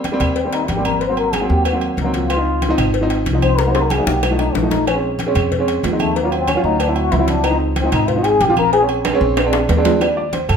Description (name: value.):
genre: Afro-Cuban jazz.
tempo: 187 BPM.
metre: 4/4.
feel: straight.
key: unclear.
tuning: A4 = 441 Hz.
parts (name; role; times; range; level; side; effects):
warm upright piano; accompaniment; 0.0-10.6 s; F3 to D5; -19 LUFS; right 1 dB; none.
congas; percussion; 0.0-10.6 s; none; -26 LUFS; left 2 dB; none.
cowbell and bongos; percussion; 0.0-10.6 s; none; -25 LUFS; left 8 dB; none.
agogo bells and timbales; percussion; 0.1-10.6 s; none; -25 LUFS; right 8 dB; none.
upright bass; bass; 0.2-10.6 s; Ab1 to G2; -21 LUFS; right 1 dB; none.
claves; percussion; 0.2-10.6 s; none; -32 LUFS; right 3 dB; none.
trombone with plunger mute; second line; 0.4-8.8 s; Ab3 to C5; -19 LUFS; left 4 dB; none.
room: moderate large studio reverb, RT60 1.2 s.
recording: minimal, uncompressed stereo recording.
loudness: -14 LUFS.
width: side -7 dB against mid.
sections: 0.0-10.0 A section.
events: trombone solo 0.0-10.0; drum fill 3.6-4.9, 9.0-10.0.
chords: 0.0 Abmaj9; 1.0 Ab9; 2.3 Dbmaj9; 3.6 Cm7b5; 4.2 B7#11; 4.9 Bbm9; 6.2 Ebm9; 6.8 D9; 7.4 Dbmaj7; 8.7 Bbm7; 9.4 Bb7; 10.0 Ebmaj7.